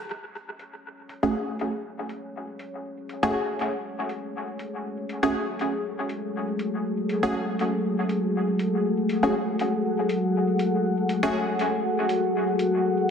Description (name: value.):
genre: dub techno.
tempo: 120 BPM.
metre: 4/4.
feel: swing 54% on 16ths.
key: F# minor.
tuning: A4 = 440 Hz.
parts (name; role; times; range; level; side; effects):
deep dark ambient pad; sustained chords; 1.0-13.1 s; F#4 to F#5; -25 LUFS; left 1 dB; chorus, built-in reverb.
electronic hi-hat; drums; 0.1-12.7 s; none; -40 LUFS; equal; overdrive, low-pass filter on hats, low-pass filter on snare, dub echo.
filtered dub chord stab; stabs; 1.2-11.3 s; A3 to G#4; -27 LUFS; equal; chorus, phaser, dub echo.
room: wet digital room reverb, RT60 1.2 s, digital ambience.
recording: dense, heavily limited modern master.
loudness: -24 LUFS.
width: side -7 dB against mid.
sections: 0.0-13.1 A section.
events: filter sweep on synth stab 0.0-13.1; filter sweep on ambient pad 0.0-13.1.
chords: 0.0 F#madd9.